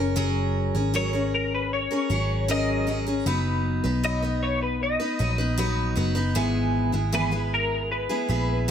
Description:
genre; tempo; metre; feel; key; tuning
acoustic pop; 78 BPM; 4/4; straight; B major; A4 = 441 Hz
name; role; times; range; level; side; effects
picked steel-string acoustic guitar; accompaniment; 0.0-8.7 s; G#2 to B4; -26 LUFS; left 1 dB; none
vintage muted picked electric bass; bass; 0.0-8.7 s; F#1 to B1; -27 LUFS; equal; none
twelve-string electric guitar; melody; 1.0-8.7 s; A#4 to D#5; -28 LUFS; left 2 dB; ensemble chorus, digital delay
room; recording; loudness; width
moderate studio ambience, RT60 0.5 s; none; -22 LUFS; side -8 dB against mid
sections
0.0-8.7 A section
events
none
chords
0.0 F#add9; 3.3 B/F#; 6.4 E/G#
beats
| 0.16 0.94 1.71 2.49 | 3.26 4.04 4.81 5.58 | 6.36 7.13 7.91 8.68

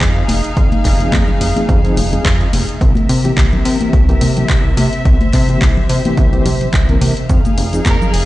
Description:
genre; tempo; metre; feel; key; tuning
nu-disco, nu disco; 107 BPM; 4/4; swing 55% on 16ths; unclear; A4 = 435 Hz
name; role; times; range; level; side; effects
reed electric piano; accompaniment; 0.0-8.3 s; E3 to Bb4; -21 LUFS; left 1 dB; fast tremolo, digital delay
dark studio string section; sustained chords; 0.0-8.3 s; C4 to F5; -23 LUFS; left 2 dB; sidechain pumping
chorused synth bass; bass; 0.0-8.3 s; F1 to C3; -16 LUFS; equal; tube saturation
electronic kick drum; drums; 0.0-8.0 s; none; -14 LUFS; equal; studio reverb
house drum kit; drums; 0.0-8.3 s; handclaps, hi-hat; -22 LUFS; equal; studio reverb
congas and cabasa; percussion; 0.3-8.1 s; none; -22 LUFS; left 2 dB; none
warm chamber violin section; melody; 7.9-8.3 s; Ab4 to Bb4; -21 LUFS; right 2 dB; none
room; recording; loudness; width
light reverb, small room ambience; played on a big sound system in a bare room, large studio reverb, nothing above 10.3 kHz; -11 LUFS; side -16 dB against mid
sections
0.0-8.3 A section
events
none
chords
0.0 Fm7; 2.8 C7; 7.3 Fm7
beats
0.01 | 0.57 1.13 1.69 2.25 | 2.81 3.37 3.93 4.49 | 5.05 5.62 6.18 6.74 | 7.30 7.86

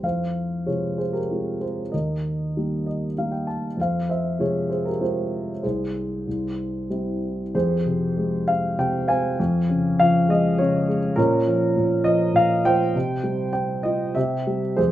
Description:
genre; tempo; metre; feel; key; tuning
classical, lyrical solo piano; 92-103 BPM; 3/4; rubato; F minor; A4 = 435 Hz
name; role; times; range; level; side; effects
dark grand piano; solo; 0.0-14.9 s; C2 to A5; -20 LUFS; equal; none
room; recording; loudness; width
light reverb; none; -20 LUFS; side -13 dB against mid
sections
0.0-7.5 A section; 7.5-14.9 B section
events
grand piano fill 2.6-3.8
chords
0.0 Fm; 1.9 Eb; 3.8 Fm; 5.6 Ab/C; 6.3 C; 7.5 Fm; 9.4 Db/F; 11.2 Bbm; 12.9 Csus4; 14.2 C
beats
| 0.04 0.67 1.30 | 1.93 2.55 3.17 | 3.78 4.39 5.01 | 5.64 6.26 6.91 | 7.54 8.17 8.78 | 9.39 10.00 10.59 | 11.17 11.76 12.35 | 12.95 13.54 14.16 | 14.78

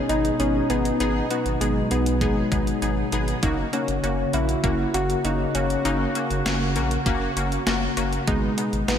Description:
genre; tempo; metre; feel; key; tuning
synth-pop; 99 BPM; 4/4; straight; G# minor; A4 = 440 Hz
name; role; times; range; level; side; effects
soft struck synth lead; melody; 0.0-9.0 s; G#3 to F#4; -26 LUFS; left 2 dB; chorus, digital delay
funky polysynth comp; accompaniment; 0.0-9.0 s; G#3 to G#4; -27 LUFS; left 1 dB; chorus
sweeping resonant pad; sustained chords; 0.0-9.0 s; B2 to F#4; -28 LUFS; right 1 dB; wide subtle chorus
round analog bass; bass; 0.1-9.0 s; F#1 to B1; -27 LUFS; equal; none
clean 12-bit digital drum machine; drums; 0.1-9.0 s; hi-hat, kick drum, snare drum; -28 LUFS; equal; overdrive, gated reverb
room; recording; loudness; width
wet lush hall reverb, RT60 2.9 s; bright 1980s-style digital production; -21 LUFS; side -8 dB against mid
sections
0.0-9.0 A section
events
none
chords
0.0 G#m; 3.4 F#; 8.3 G#m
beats
0.40 | 1.00 1.61 2.21 2.82 | 3.43 4.03 4.64 5.25 | 5.85 6.46 7.06 7.67 | 8.28 8.88

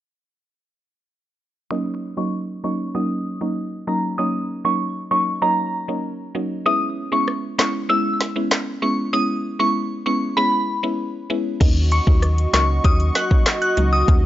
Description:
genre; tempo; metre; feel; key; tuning
dancehall; 97 BPM; 4/4; straight; Eb phrygian; A4 = 440 Hz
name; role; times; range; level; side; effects
glassy synth bell; melody; 1.7-14.0 s; Bb5 to Gb6; -22 LUFS; equal; chorus, phaser, low-pass filter
mallet-like synth pluck; accompaniment; 1.7-14.3 s; Gb3 to Fb4; -24 LUFS; equal; chorus, phaser, sidechain pumping, low-pass filter
afro-pop drum kit; drums; 7.3-14.2 s; crash cymbal, handclaps, hi-hat, kick drum, rim click, snare drum; -18 LUFS; equal; none
warm analog pad; sustained chords; 11.6-14.3 s; Gb4 to Eb6; -25 LUFS; equal; chorus, sidechain pumping
organ-like FM bass; bass; 11.6-14.3 s; Db2 to Eb2; -18 LUFS; equal; none
room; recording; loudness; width
little or no reverb; dry, gritty hardware recording, cassette tape, nothing above 7.6 kHz; -18 LUFS; side -13 dB against mid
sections
1.7-11.6 A section; 11.6-14.3 B section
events
filter sweep 1.7-11.6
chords
1.7 Ebm7; 6.7 Dbm7; 11.6 Ebm7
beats
| 1.71 2.33 2.95 3.57 | 4.18 4.80 5.42 6.04 | 6.66 7.28 7.90 8.52 | 9.13 9.75 10.37 10.99 | 11.61 12.23 12.85 13.46 | 14.08

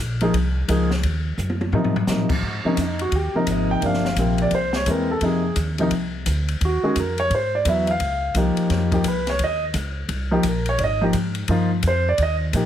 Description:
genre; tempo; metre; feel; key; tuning
jazz piano trio; 172 BPM; 4/4; swing 63% on 8ths; Ab major; A4 = 440 Hz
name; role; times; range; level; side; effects
upright bass; bass; 0.0-12.7 s; G1 to Bb2; -24 LUFS; equal; none
warm grand piano; melody; 0.2-12.7 s; C3 to G5; -21 LUFS; equal; plate reverb
open jazz drum kit; drums; 0.2-12.6 s; crash cymbal, hi-hat, kick drum, ride cymbal, snare drum, toms; -28 LUFS; left 2 dB; none
room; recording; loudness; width
light reverb; heavily compressed radio sound; -19 LUFS; side -10 dB against mid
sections
0.0-2.4 A section; 2.4-12.7 B section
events
drum fill 1.4-2.1; grand piano solo 2.4-12.7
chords
0.0 Fm7; 1.0 Ebm; 1.7 Ab; 3.8 Gm7; 4.5 Caug7; 5.2 Fm7; 6.6 Ebm9; 7.3 E(b13); 8.0 Dbmaj7; 9.4 Eb7(no3); 10.8 Ab5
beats
0.34 0.69 | 1.03 1.38 1.73 2.08 | 2.43 2.77 3.12 3.47 | 3.82 4.17 4.52 4.87 | 5.21 5.56 5.91 6.26 | 6.61 6.96 7.31 7.66 | 8.01 8.36 8.70 9.05 | 9.40 9.75 10.10 10.45 | 10.79 11.14 11.49 11.84 | 12.19 12.53

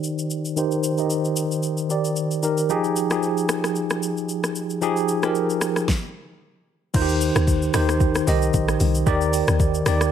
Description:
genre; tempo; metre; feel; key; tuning
amapiano; 113 BPM; 4/4; swing 55% on 16ths; Eb major; A4 = 439 Hz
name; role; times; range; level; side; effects
tine electric piano; accompaniment; 0.0-10.1 s; Eb3 to Eb5; -21 LUFS; equal; medium stereo tremolo, low-pass filter
smooth R&B drum kit; drums; 0.0-10.1 s; crash cymbal, hi-hat, kick drum, rim click, shaker, snare drum; -25 LUFS; left 1 dB; none
deep log drum bass; bass; 6.9-10.1 s; Bb1 to Eb2; -22 LUFS; equal; none
room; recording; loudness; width
light reverb, digital ambience; none; -19 LUFS; side -9 dB against mid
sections
0.0-6.9 A section; 6.9-10.1 B section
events
filter sweep on tine electric piano 0.0-6.9; stop 5.9-6.9; drop 6.9-10.1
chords
0.0 Eb6; 2.7 Fm9; 6.9 Eb6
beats
0.04 | 0.57 1.10 1.63 2.17 | 2.70 3.23 3.76 4.29 | 4.82 5.35 5.88 6.41 | 6.94 7.47 8.01 8.54 | 9.07 9.60

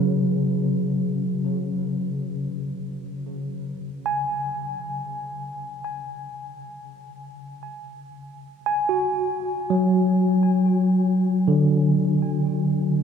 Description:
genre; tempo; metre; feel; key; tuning
ambient; free time; none; none; B dorian; A4 = 441 Hz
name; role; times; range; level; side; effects
bright tine electric piano; solo; 0.0-13.0 s; C#3 to G#5; -22 LUFS; equal; medium stereo tremolo, ping-pong delay
room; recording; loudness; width
wet cathedral reverb, RT60 6.8 s; dark, warm production; -21 LUFS; side -7 dB against mid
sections
0.0-13.0 A section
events
none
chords
0.0 C#5; 2.1 Bmadd9 (rootless)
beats
free time

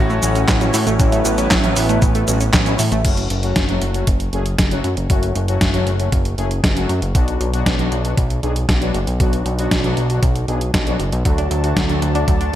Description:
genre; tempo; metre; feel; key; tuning
synthwave; 117 BPM; 4/4; straight; F# minor; A4 = 440 Hz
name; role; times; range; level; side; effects
bright electric grand piano; melody; 0.0-2.5 s; F#4; -28 LUFS; left 1 dB; digital delay
lush unison pad; sustained chords; 0.0-3.0, 11.3-12.6 s; D3 to A5; -25 LUFS; equal; chorus, sidechain pumping
analog pluck; arpeggios; 0.0-3.0, 11.3-12.5 s; E3 to F#4; -24 LUFS; right 2 dB; chorus, phaser, digital delay
fat analog bass; bass; 0.0-12.5 s; F#1 to A2; -19 LUFS; equal; none
detuned 8-bit digital drum machine; drums; 0.1-12.5 s; crash cymbal, handclaps, hi-hat, shaker, snare drum; -21 LUFS; equal; gated reverb
analog synth brass; stabs; 0.2-12.3 s; A2 to G#4; -24 LUFS; left 2 dB; chorus, digital delay
electronic kick drum; drums; 0.5-12.4 s; none; -18 LUFS; equal; none
room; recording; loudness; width
light reverb, digital ambience; bright 1980s-style digital production; -15 LUFS; side -12 dB against mid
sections
0.0-3.0 A section; 3.0-12.6 B section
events
none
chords
0.0 A6; 3.0 F#m; 7.2 Bm; 11.3 D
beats
0.48 | 1.00 1.51 2.02 2.53 | 3.05 3.56 4.07 4.59 | 5.10 5.61 6.12 6.64 | 7.15 7.66 8.18 8.69 | 9.20 9.71 10.23 10.74 | 11.25 11.77 12.28

